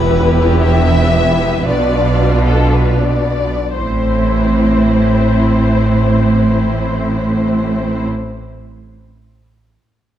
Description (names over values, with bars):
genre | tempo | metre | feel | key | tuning
cinematic | free time | none | none | A minor | A4 = 440 Hz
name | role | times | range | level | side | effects
warm studio violin section | melody | 0.0-8.0 s | A4 to E5 | -20 LUFS | left 4 dB | none
warm symphonic violin section | second line | 0.0-8.0 s | E4 to C5 | -22 LUFS | left 4 dB | none
rich symphonic viola section | accompaniment | 0.0-8.0 s | E3 to E4 | -21 LUFS | left 1 dB | none
clear symphonic cello section | bass | 0.0-8.0 s | E2 to B2 | -16 LUFS | right 2 dB | none
rich symphonic double bass section | bass | 0.0-8.0 s | E1 to B1 | -16 LUFS | right 2 dB | none
impact | sound effects | 0.0-1.7 s | none | -32 LUFS | left 1 dB | none
room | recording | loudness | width
moderate scoring stage reverb, RT60 1.9 s | none | -11 LUFS | side -11 dB against mid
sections
0.0-3.8 A section; 3.8-8.0 B section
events
impact 0.0-1.7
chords
0.0 Em; 1.7 Bdim; 3.8 Am